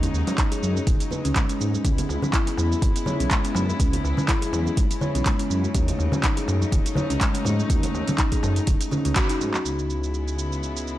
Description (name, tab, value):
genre	afro house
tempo	123 BPM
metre	4/4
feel	swing 56% on 16ths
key	C# minor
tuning	A4 = 441 Hz
part	warm studio string section	sustained chords	0.0-11.0 s	C#3 to E4	-32 LUFS	left 2 dB	sidechain pumping
part	kalimba	arpeggios	0.0-9.4 s	G#3 to C#5	-28 LUFS	left 1 dB	sidechain pumping, tape echo
part	dark detuned saw bass	bass	0.0-11.0 s	D#1 to G#2	-26 LUFS	equal	sidechain pumping
part	afro-pop drum kit	drums	0.0-11.0 s	handclaps, hi-hat, shaker	-29 LUFS	right 1 dB	studio reverb
part	congas	percussion	0.0-9.6 s	none	-33 LUFS	right 2 dB	none
part	electronic kick drum	drums	0.4-9.3 s	none	-23 LUFS	equal	studio reverb
part	darbuka	percussion	2.1-9.0 s	none	-31 LUFS	left 1 dB	none
room	small room ambience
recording	dry, gritty hardware recording, transformer saturation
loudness	-21 LUFS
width	side -14 dB against mid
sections	0.0-9.7 A section; 9.7-11.0 B section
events	band accent 9.2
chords	0.0 D#m7; 1.8 C#m7; 5.7 D#m7b5; 9.7 C#m7